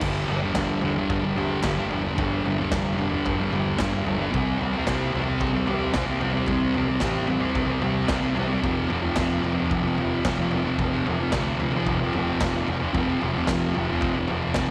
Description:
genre	garage rock duo or trio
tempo	111 BPM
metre	4/4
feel	straight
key	unclear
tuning	A4 = 435 Hz
part	thick fuzz guitar	riff	0.0-14.7 s	F2 to C4	-26 LUFS	equal	distortion
part	growling picked electric bass	bass	0.0-14.7 s	F1 to D2	-34 LUFS	equal	overdrive
part	raw garage drum kit	drums	0.0-14.7 s	crash cymbal, kick drum, snare drum, toms	-31 LUFS	equal	none
part	group handclap	percussion	0.6-14.7 s	none	-42 LUFS	equal	none
room	moderate echo chamber reverb, RT60 2.2 s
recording	none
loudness	-25 LUFS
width	mono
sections	0.0-14.7 A section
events	none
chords	0.0 G5; 4.3 C5; 8.6 F5

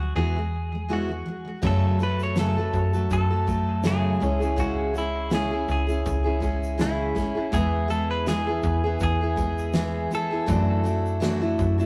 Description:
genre	acoustic pop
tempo	81 BPM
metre	4/4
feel	swing 55% on 16ths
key	unclear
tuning	A4 = 440 Hz
part	direct-recorded clean electric guitar	melody	0.0-11.2 s	E4 to C#5	-33 LUFS	equal	delay
part	picked steel-string acoustic guitar	accompaniment	0.0-11.9 s	F#2 to A4	-29 LUFS	equal	none
part	slap-like FM bass	bass	0.0-11.9 s	C#2 to F#2	-28 LUFS	equal	none
part	felt-muted upright piano	accompaniment	1.6-11.9 s	E3 to D5	-39 LUFS	equal	none
part	loose indie drum kit	drums	1.6-11.9 s	crash cymbal, kick drum, shaker, snare drum	-34 LUFS	equal	none
room	moderate stone room reverb, RT60 1.3 s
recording	rough rehearsal-room recording, tube saturation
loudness	-25 LUFS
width	mono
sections	0.0-1.6 A section; 1.6-11.9 B section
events	none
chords	0.2 Eadd9; 1.6 F#m; 4.2 C#m; 7.5 E; 10.5 Dadd9/F#

